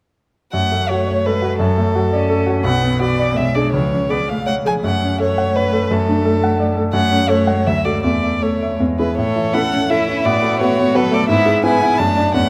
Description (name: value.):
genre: quick classical-period movement for piano quartet.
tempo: 155-176 BPM.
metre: 3/4.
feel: rubato.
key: F# minor, A major from 6.9 s.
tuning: A4 = 444 Hz.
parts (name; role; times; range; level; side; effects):
rich violin; melody; 0.5-12.5 s; A4 to A5; -22 LUFS; equal; none.
rich cello; second line; 0.5-12.5 s; E#3 to C#4; -26 LUFS; equal; none.
clear grand piano; accompaniment; 0.5-12.5 s; B1 to F#5; -19 LUFS; equal; none.
rich violin; second line; 9.2-12.5 s; C#4 to A4; -26 LUFS; equal; none.
room: moderate concert hall reverb, RT60 2.1 s.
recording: close, detailed microphones.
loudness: -17 LUFS.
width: mono.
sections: 0.5-9.2 A section; 9.2-12.5 B section.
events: none.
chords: 0.5 F#m; 1.6 D/F#; 2.6 Bm; 3.4 G#dim/B; 3.7 C#; 4.8 F#m; 5.9 D/F#; 6.9 F#m; 7.7 D; 8.0 A/E; 8.8 E; 9.2 A; 10.2 Bm7/A; 11.3 E/G#; 12.0 D/F#.